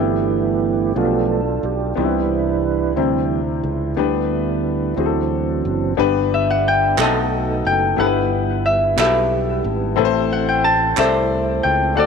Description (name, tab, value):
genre	slow gospel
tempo	60 BPM (dotted quarters)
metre	6/8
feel	straight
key	G major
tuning	A4 = 444 Hz
part	clear grand piano	accompaniment	0.0-12.1 s	G2 to D5	-22 LUFS	left 13 dB	none
part	mellow tonewheel organ	sustained chords	0.0-12.1 s	D3 to B4	-22 LUFS	right 9 dB	slow rotary speaker, overdrive, chorus vibrato
part	fingered electric bass	bass	0.0-12.1 s	F#1 to D2	-24 LUFS	equal	none
part	Celtic harp	melody	6.3-12.1 s	G4 to A5	-18 LUFS	left 1 dB	tape echo
part	group handclap	percussion	7.0-11.3 s	none	-24 LUFS	right 11 dB	none
room	moderate plate reverb, RT60 2.6 s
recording	1960s-style stereo with parts hard left and right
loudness	-16 LUFS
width	side -6 dB against mid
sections	0.0-6.0 A section; 6.0-12.1 B section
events	tonewheel organ solo 0.0-6.0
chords	0.0 G6; 1.0 G7/B; 2.0 Cmaj7; 3.0 D9sus4; 4.0 G/D; 5.0 D7; 6.0 G; 7.0 B7; 8.0 Em/G; 10.0 Am